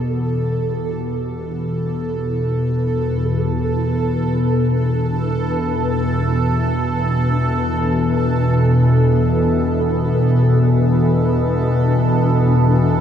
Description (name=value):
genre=dark ambient drone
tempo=free time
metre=none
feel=none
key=E minor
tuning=A4 = 440 Hz
part: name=granular cloud pad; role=sustained chords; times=0.0-13.0 s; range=D4 to B4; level=-27 LUFS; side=left 1 dB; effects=built-in reverb
part: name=organ-like drone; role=drone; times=0.0-13.0 s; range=E2 to B2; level=-16 LUFS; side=left 1 dB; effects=ensemble chorus, built-in reverb
part: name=bubbling stepped-filter texture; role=texture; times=0.0-13.0 s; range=A4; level=-24 LUFS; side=right 4 dB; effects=chorus, built-in reverb
room=wet huge ambient reverb, RT60 8.5 s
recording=cassette tape, nothing above 10.5 kHz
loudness=-15 LUFS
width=side -9 dB against mid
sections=0.0-13.0 A section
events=fade-in on ambient pad 0.0-13.0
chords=0.0 Em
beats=free time